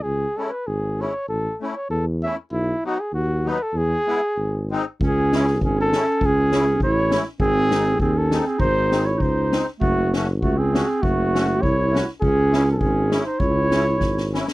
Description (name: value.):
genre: alpine folk, alpine dance band.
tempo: 99 BPM.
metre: 2/4.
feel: swing 53% on 8ths, rubato.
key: C# harmonic minor from 5.0 s.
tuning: A4 = 440 Hz.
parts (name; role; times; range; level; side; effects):
dark trumpet; melody; 0.0-14.3 s; E4 to E5; -22 LUFS; equal; none.
mellow tuba; bass; 0.0-14.4 s; F#1 to E2; -22 LUFS; equal; none.
musette accordion; accompaniment; 0.4-14.5 s; F#3 to F#4; -26 LUFS; left 2 dB; none.
warm clarinet; second line; 5.0-14.3 s; A3 to E4; -25 LUFS; right 4 dB; none.
street-band drum kit; drums; 5.0-14.5 s; kick drum, snare drum; -25 LUFS; left 1 dB; none.
room: little or no reverb.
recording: dry, close 1970s-style studio recording.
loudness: -18 LUFS.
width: side -18 dB against mid.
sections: 0.0-5.0 A section; 5.0-14.5 B section.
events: drum fill 14.0-14.5.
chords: 0.0 C#m; 1.3 A; 2.5 B; 3.7 E; 4.4 G#; 5.0 C#m; 7.4 G#; 9.8 F#m; 12.2 C#m.